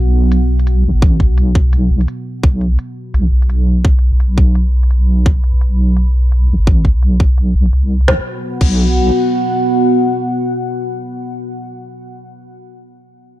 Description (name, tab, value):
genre	half-time drum and bass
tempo	170 BPM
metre	4/4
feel	swing 58% on 16ths, half-time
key	unclear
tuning	A4 = 440 Hz
part	deep dark ambient pad	sustained chords	0.0-11.7 s	B3 to B5	-19 LUFS	equal	chorus, built-in reverb, sidechain pumping
part	deep soft wobble bass	bass	0.0-9.1 s	A1 to C2	-12 LUFS	equal	chorus
part	organic electronic drum kit	drums	0.3-8.7 s	crash cymbal, hi-hat, snare drum	-21 LUFS	equal	low-pass filter on snare, low-pass filter on hats, low-pass filter on cymbals
part	electronic kick drum	drums	1.0-8.7 s	none	-12 LUFS	equal	none
room	light reverb, digital ambience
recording	dark, warm production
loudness	-11 LUFS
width	side -14 dB against mid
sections	0.0-8.1 A section; 8.1-10.9 B section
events	filter sweep on drum 0.0-8.1; filter sweep on ambient pad 0.0-8.1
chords	0.0 B5